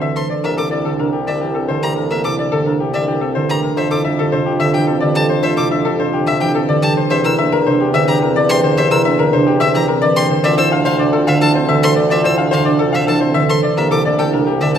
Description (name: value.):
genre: classical, minimalist pattern music.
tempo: 108 BPM.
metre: 3/4.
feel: straight.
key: unclear.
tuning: A4 = 444 Hz.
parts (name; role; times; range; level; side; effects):
bright grand piano; melody; 0.0-14.8 s; G4 to F5; -18 LUFS; left 7 dB; none.
concert harp; accompaniment; 0.0-14.8 s; C3 to C4; -18 LUFS; right 2 dB; none.
marimba with medium mallets; arpeggios; 0.0-14.8 s; C4 to C5; -21 LUFS; right 7 dB; none.
warm bassoon; bass; 0.0-14.8 s; C2 to F2; -20 LUFS; equal; none.
clear violin; arpeggios; 0.2-14.8 s; E5 to E6; -22 LUFS; left 1 dB; none.
room: moderate scoring stage reverb, RT60 1.6 s.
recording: lossy compression artefacts.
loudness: -13 LUFS.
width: side -8 dB against mid.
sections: 0.0-14.8 A section.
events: none.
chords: 0.4 C13; 3.8 F69; 7.1 Em7b5; 10.4 Dm7; 13.8 C13.